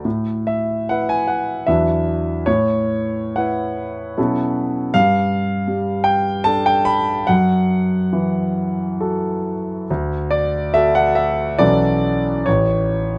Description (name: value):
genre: classical, impressionist solo piano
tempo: 62-82 BPM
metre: 3/4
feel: rubato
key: A major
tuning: A4 = 440 Hz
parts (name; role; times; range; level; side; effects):
- clear concert grand piano; solo; 0.0-13.2 s; A1 to B5; -19 LUFS; equal; none
room: little or no reverb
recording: close, detailed microphones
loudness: -19 LUFS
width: mono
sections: 0.0-13.2 A section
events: none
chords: 0.0 Asus2; 1.7 Esus2; 2.5 A69; 4.2 B9sus4; 4.9 Gsus2; 7.3 F#m7; 9.9 D; 11.6 Bm11; 12.5 A